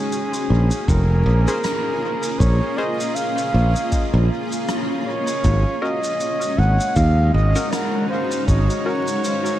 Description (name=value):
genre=ambient dub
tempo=79 BPM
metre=4/4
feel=swing 57% on 16ths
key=Bb minor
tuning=A4 = 439 Hz
part: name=trumpet with bucket mute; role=melody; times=0.0-9.6 s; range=Ab4 to Gb5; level=-24 LUFS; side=right 1 dB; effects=dub echo
part: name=granular cloud pad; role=sustained chords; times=0.0-9.6 s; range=Ab3 to Ab4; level=-25 LUFS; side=equal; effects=built-in reverb
part: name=shaker and rim click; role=drums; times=0.1-9.6 s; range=none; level=-32 LUFS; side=left 1 dB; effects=dub echo
part: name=modern bright fingered electric bass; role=bass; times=0.5-8.7 s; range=F1 to Eb2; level=-16 LUFS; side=equal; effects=none
part: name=electronic kick drum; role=drums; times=0.9-8.7 s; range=none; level=-21 LUFS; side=equal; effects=none
part: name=filtered dub chord stab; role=stabs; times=1.5-9.1 s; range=Db4 to C5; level=-31 LUFS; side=left 2 dB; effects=chorus, dub echo
room=light reverb, small room ambience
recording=vinyl crackle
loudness=-17 LUFS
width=side -13 dB against mid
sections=0.0-9.6 A section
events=none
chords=0.0 Bbm7; 5.4 Ab7sus4